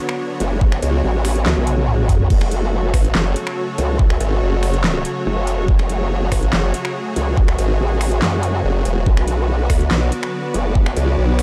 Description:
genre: heavy wobble dubstep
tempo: 142 BPM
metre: 4/4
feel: half-time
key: F# minor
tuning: A4 = 435 Hz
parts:
  - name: supersaw chords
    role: sustained chords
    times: 0.0-11.4 s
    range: C#3 to C#5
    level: -29 LUFS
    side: equal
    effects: sidechain pumping
  - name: rich symphonic string section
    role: texture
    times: 0.0-11.4 s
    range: B3 to D5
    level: -29 LUFS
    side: equal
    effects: sidechain pumping
  - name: big-room dance drum kit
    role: drums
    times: 0.1-11.4 s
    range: crash cymbal, finger snaps, handclaps, hi-hat, snare drum, toms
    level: -25 LUFS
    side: equal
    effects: overdrive
  - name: growl bass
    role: bass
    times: 0.4-10.9 s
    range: F#1 to F#2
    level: -21 LUFS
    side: equal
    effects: chorus, overdrive
  - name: electronic kick drum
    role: drums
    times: 0.6-10.8 s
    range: none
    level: -18 LUFS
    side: equal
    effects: overdrive
  - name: formant-sweep wobble bass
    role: bass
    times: 0.8-11.4 s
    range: E1 to D2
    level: -20 LUFS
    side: equal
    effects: chorus, overdrive
room: little or no reverb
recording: dark, warm production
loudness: -18 LUFS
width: mono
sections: 0.0-11.4 A section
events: drum fill 1.7-2.3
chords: 0.0 Bm; 2.3 F#m; 9.1 Bm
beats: 0.19 | 0.61 1.04 1.46 1.88 | 2.30 2.73 3.15 3.57 | 3.99 4.42 4.84 5.26 | 5.68 6.11 6.53 6.95 | 7.37 7.80 8.22 8.64 | 9.06 9.49 9.91 10.33 | 10.75 11.18

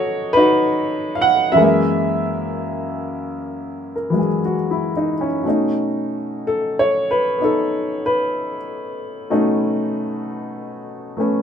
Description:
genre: solo jazz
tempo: 60-66 BPM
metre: 4/4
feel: swing 67% on 8ths, rubato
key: B mixolydian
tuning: A4 = 440 Hz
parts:
  - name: warm upright piano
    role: solo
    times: 0.0-11.4 s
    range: F#2 to F#5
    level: -18 LUFS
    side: equal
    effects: none
room: moderate studio reverb, RT60 0.8 s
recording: minimal, uncompressed stereo recording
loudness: -17 LUFS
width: side -8 dB against mid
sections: 0.0-5.4 A section; 5.4-11.4 B section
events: upright piano solo 5.4-11.4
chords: 0.0 B9; 1.6 F#9; 5.4 B9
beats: 0.64 | 1.57 2.51 3.46 4.46 | 5.45 6.43 7.40 8.35 | 9.31 10.25 11.18

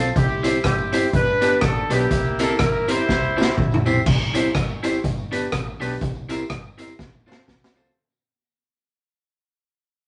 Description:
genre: ska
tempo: 123 BPM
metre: 4/4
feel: swing 58% on 8ths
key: C major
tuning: A4 = 440 Hz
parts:
  - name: electric guitar at the edge of break-up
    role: accompaniment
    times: 0.0-7.9 s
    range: D4 to C5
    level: -28 LUFS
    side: equal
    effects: none
  - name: warm upright piano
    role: stabs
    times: 0.0-7.9 s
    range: B3 to C5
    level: -28 LUFS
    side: equal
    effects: none
  - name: deep dub fingered electric bass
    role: bass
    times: 0.0-7.9 s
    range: F1 to D2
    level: -31 LUFS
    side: equal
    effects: none
  - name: warm horn section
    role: melody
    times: 0.2-3.8 s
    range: Bb3 to C5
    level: -25 LUFS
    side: equal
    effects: none
  - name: street-band drum kit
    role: drums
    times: 0.2-7.8 s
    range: crash cymbal, hi-hat, kick drum, rim click, snare drum, toms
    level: -25 LUFS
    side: equal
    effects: none
  - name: tambourine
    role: percussion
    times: 0.4-7.9 s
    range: none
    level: -44 LUFS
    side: equal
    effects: dub echo
room: wet studio reverb, RT60 0.5 s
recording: nothing above 10.3 kHz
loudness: -21 LUFS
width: mono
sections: 0.0-4.1 A section; 4.1-8.0 B section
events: drum fill 3.1-4.1, 7.0-8.0; fade-out 4.1-8.0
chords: 0.2 C; 1.1 G; 2.1 C7; 3.1 C; 5.0 G; 6.0 C7; 7.0 F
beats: | 0.16 0.65 1.14 1.62 | 2.11 2.60 3.09 3.58 | 4.06 4.55 5.04 5.53 | 6.01 6.50 6.99 7.48

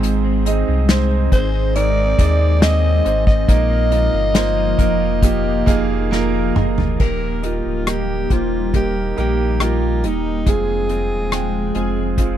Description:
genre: pop ballad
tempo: 69 BPM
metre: 4/4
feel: straight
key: Eb major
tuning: A4 = 441 Hz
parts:
  - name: clear grand piano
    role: accompaniment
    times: 0.0-12.4 s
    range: Ab2 to G5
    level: -23 LUFS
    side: right 9 dB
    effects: none
  - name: ethereal airy pad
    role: sustained chords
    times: 0.0-12.4 s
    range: F3 to Eb4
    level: -24 LUFS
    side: left 1 dB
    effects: ensemble chorus, built-in reverb
  - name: direct-recorded clean electric guitar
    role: arpeggios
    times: 0.0-12.4 s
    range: F2 to Bb4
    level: -32 LUFS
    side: left 13 dB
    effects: analog chorus
  - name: warm sub bass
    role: bass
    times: 0.0-12.4 s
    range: D1 to Eb2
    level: -20 LUFS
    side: equal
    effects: none
  - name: unplugged drum kit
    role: drums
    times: 0.0-12.4 s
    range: crash cymbal, hi-hat, kick drum, rim click, snare drum, toms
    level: -17 LUFS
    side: left 1 dB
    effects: none
  - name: growling alto saxophone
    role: melody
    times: 1.3-12.2 s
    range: Eb4 to Eb5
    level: -22 LUFS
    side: left 1 dB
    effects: slapback echo
room: little or no reverb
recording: dry, close 1970s-style studio recording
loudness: -15 LUFS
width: side -11 dB against mid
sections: 0.0-7.0 A section; 7.0-12.4 B section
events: drum fill 6.1-7.0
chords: 0.0 Ab; 3.5 Bbsus4; 7.0 Eb; 10.5 Fm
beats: | 0.03 0.89 1.75 2.62 | 3.48 4.35 5.23 6.12 | 7.00 7.87 8.74 9.60 | 10.47 11.32 12.18

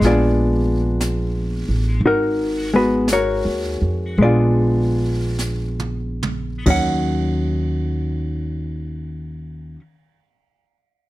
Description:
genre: jazz ballad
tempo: 45-62 BPM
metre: 4/4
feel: swing 68% on 8ths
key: Eb minor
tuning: A4 = 440 Hz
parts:
  - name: hollow-body jazz guitar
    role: accompaniment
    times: 0.0-9.8 s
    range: Eb3 to Gb5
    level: -20 LUFS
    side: left 1 dB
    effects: none
  - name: upright bass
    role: bass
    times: 0.0-9.8 s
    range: Ab1 to F2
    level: -22 LUFS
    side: right 1 dB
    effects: none
  - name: jazz brush drum kit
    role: drums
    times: 0.0-7.1 s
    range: brushed snare drum, hi-hat, kick drum, ride cymbal, snare drum, toms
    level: -29 LUFS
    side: right 3 dB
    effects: none
room: little or no reverb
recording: none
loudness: -17 LUFS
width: side -17 dB against mid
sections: 0.0-6.7 A section; 6.7-11.1 B section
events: slowing down 0.0-6.7; drum fill 5.4-6.7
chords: 0.0 Bb7b9; 2.0 Abm9; 4.2 Bb7b9; 6.7 Ebm7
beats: 0.01 1.00 | 2.02 3.08 4.20 5.39 | 6.67 7.98 9.29

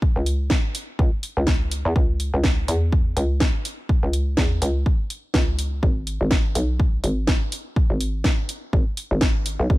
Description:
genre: bass house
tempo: 124 BPM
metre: 4/4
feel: swing 57% on 16ths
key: unclear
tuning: A4 = 441 Hz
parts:
  - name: electronic kick drum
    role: drums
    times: 0.0-9.8 s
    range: none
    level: -20 LUFS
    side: equal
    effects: small room ambience
  - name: hollow knocking FM bass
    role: bass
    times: 0.2-9.8 s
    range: G#1 to E2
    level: -22 LUFS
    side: equal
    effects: overdrive, sidechain pumping
  - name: garage drum kit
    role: drums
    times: 0.3-9.6 s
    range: hi-hat, snare drum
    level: -26 LUFS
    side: equal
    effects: small room ambience
room: little or no reverb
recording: dark, warm production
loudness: -19 LUFS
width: side -18 dB against mid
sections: 0.0-9.8 A section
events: none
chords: none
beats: | 0.02 0.51 0.99 1.47 | 1.96 2.44 2.92 3.41 | 3.89 4.38 4.86 5.34 | 5.83 6.31 6.80 7.28 | 7.76 8.25 8.73 9.21 | 9.70

